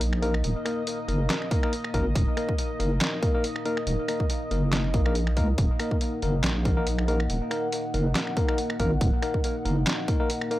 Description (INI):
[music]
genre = deep dubstep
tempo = 140 BPM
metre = 4/4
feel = swing 55% on 16ths, half-time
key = Eb minor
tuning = A4 = 440 Hz
[part]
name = deep dark ambient pad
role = sustained chords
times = 0.0-10.6 s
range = Bb3 to Gb5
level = -32 LUFS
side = equal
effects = chorus, built-in reverb
[part]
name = deep soft wobble bass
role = bass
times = 0.0-9.9 s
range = Eb1 to Db2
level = -25 LUFS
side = equal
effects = chorus
[part]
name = trip hop sampler-style drum kit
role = drums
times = 0.0-10.6 s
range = finger snaps, handclaps, hi-hat, snare drum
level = -30 LUFS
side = equal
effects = none
[part]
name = tine electric piano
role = stabs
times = 0.2-10.6 s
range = Bb3 to Bb4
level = -30 LUFS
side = left 2 dB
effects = dub echo
[part]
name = electronic kick drum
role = drums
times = 1.5-10.2 s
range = none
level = -26 LUFS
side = equal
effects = none
[sound]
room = little or no reverb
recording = dry, gritty hardware recording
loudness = -23 LUFS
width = side -15 dB against mid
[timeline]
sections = 0.0-10.6 A section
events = none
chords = 0.0 Eb5